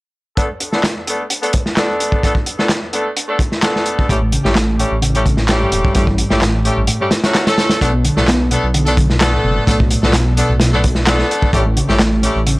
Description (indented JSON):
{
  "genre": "breakbeat, breaks",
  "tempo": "129 BPM",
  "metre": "4/4",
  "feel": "straight",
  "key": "B minor",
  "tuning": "A4 = 438 Hz",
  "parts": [
    { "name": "bright horn section", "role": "stabs", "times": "0.4-12.4 s", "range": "F#3 to A4", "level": "-19 LUFS", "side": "equal", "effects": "low-pass filter, analog delay" },
    { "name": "crunchy breakbeat drum kit", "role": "drums", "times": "0.4-12.6 s", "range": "hi-hat, kick drum, snare drum", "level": "-17 LUFS", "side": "equal", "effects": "none" },
    { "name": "electronic handclaps", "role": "drums", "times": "0.8-12.1 s", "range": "none", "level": "-21 LUFS", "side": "equal", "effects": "none" },
    { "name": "reed electric piano", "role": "riff", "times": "4.1-12.6 s", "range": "G2 to B3", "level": "-19 LUFS", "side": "equal", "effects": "analog delay" },
    { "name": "dark detuned saw bass", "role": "bass", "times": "4.1-12.6 s", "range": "E1 to B1", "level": "-17 LUFS", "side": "equal", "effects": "tube saturation" }
  ],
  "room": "small room ambience",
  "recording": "dry, gritty hardware recording, cassette tape",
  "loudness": "-13 LUFS",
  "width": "side -21 dB against mid",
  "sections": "0.4-7.8 A section; 7.8-12.6 B section",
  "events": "kick drops out 6.9-7.8",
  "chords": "0.4 Bm7; 4.1 A7; 7.8 Bm7; 11.5 A7"
}